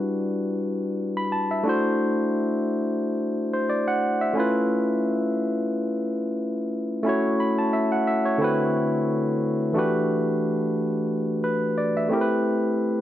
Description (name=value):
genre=R&B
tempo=89 BPM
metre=4/4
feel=swing 55% on 16ths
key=E minor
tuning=A4 = 440 Hz
part: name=barky tine electric piano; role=solo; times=0.0-13.0 s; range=D3 to B5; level=-22 LUFS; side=equal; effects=overdrive
room=light reverb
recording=none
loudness=-22 LUFS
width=side -12 dB against mid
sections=0.0-9.7 A section; 9.7-13.0 B section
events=none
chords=0.0 Em9; 1.6 D9; 4.3 C#7alt; 7.0 F#m7; 8.4 D13; 9.7 Em11; 12.1 Am9